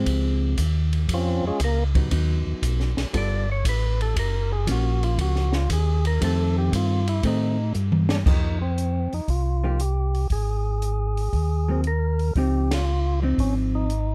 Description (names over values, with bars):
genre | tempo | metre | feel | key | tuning
soul jazz organ trio | 117 BPM | 4/4 | swing 69% on 8ths | unclear | A4 = 438 Hz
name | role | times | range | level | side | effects
vintage hollow-body jazz guitar | accompaniment | 0.0-13.9 s | Eb3 to A4 | -30 LUFS | equal | none
mellow tonewheel organ | bass | 0.0-14.1 s | Gb1 to A2 | -25 LUFS | equal | slow rotary speaker
open jazz drum kit | drums | 0.1-14.1 s | crash cymbal, hi-hat, kick drum, ride cymbal, snare drum, toms | -30 LUFS | equal | none
percussive tonewheel organ | melody | 1.1-14.1 s | F3 to D5 | -31 LUFS | equal | stopped rotary speaker
room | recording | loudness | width
little or no reverb | close, detailed microphones | -23 LUFS | mono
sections
0.0-8.3 A section; 8.3-14.1 B section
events
tonewheel organ solo 0.0-8.3; drum fill 7.7-8.3; band accent 12.6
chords
0.1 Dbmaj7; 2.1 B; 3.1 G9; 4.2 Gbmaj7; 6.2 F7; 8.3 F9sus4; 10.3 Absus2; 12.4 Dbmaj9